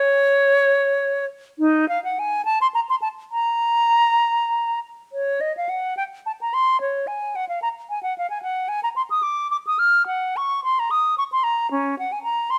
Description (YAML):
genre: classical, baroque-style fantasia for unaccompanied flute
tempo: 63-77 BPM (dotted quarters)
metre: 6/8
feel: rubato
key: Bb minor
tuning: A4 = 440 Hz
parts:
  - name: silver concert flute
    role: solo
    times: 0.0-12.6 s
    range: Db4 to F6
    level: -21 LUFS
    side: equal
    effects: none
room: moderate stone room reverb, RT60 1.2 s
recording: none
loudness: -22 LUFS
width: mono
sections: 0.0-5.1 A section; 5.1-12.6 B section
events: none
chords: none